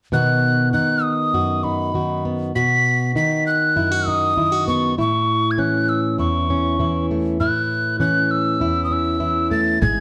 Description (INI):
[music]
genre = folk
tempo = 99 BPM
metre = 4/4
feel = straight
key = unclear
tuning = A4 = 440 Hz
[part]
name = mellow hollow tin whistle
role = melody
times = 0.1-10.0 s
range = B5 to B6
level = -22 LUFS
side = equal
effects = slapback echo
[part]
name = fingerpicked plugged-in steel-string acoustic guitar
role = accompaniment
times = 0.1-10.0 s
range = E2 to G#4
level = -22 LUFS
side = equal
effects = none
[part]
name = upright bass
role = bass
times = 9.8-10.0 s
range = G#1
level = -20 LUFS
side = equal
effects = none
[sound]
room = moderate large studio reverb, RT60 0.8 s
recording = dark, warm production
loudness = -19 LUFS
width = mono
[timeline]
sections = 0.1-10.0 A section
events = none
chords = 0.1 B; 5.0 A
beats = | 0.12 0.72 1.33 1.94 | 2.54 3.15 3.76 4.36 | 4.97 5.58 6.18 6.79 | 7.39 8.00 8.61 9.21 | 9.82